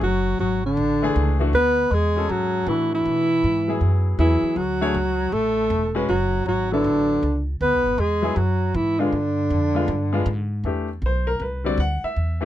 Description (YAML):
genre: jazz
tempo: 158 BPM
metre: 4/4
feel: swing 64% on 8ths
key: D lydian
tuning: A4 = 440 Hz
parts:
  - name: mellow alto saxophone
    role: melody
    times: 0.0-10.5 s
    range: D4 to B4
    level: -22 LUFS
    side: right 2 dB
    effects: none
  - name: warm bass clarinet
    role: second line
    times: 0.0-10.5 s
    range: D3 to B3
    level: -26 LUFS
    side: left 5 dB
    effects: none
  - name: upright bass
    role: bass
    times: 0.0-12.4 s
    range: E1 to B2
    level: -24 LUFS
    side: equal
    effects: none
  - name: clear baby grand piano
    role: accompaniment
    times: 1.0-12.4 s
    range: D3 to F#5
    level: -26 LUFS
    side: left 3 dB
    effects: none
room: little or no reverb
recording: close, detailed microphones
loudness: -19 LUFS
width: side -12 dB against mid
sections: 0.0-10.6 A section; 10.6-12.4 B section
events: none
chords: 0.0 Dmaj7; 1.5 E/D; 4.6 Dmaj7; 7.6 E; 9.1 G7b9; 10.6 Cmaj9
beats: | 0.02 0.40 0.78 1.16 | 1.54 1.92 2.30 2.68 | 3.06 3.44 3.81 4.20 | 4.57 4.95 5.33 5.71 | 6.09 6.47 6.85 7.23 | 7.61 7.99 8.37 8.75 | 9.13 9.51 9.88 10.26 | 10.64 11.02 11.40 11.78 | 12.16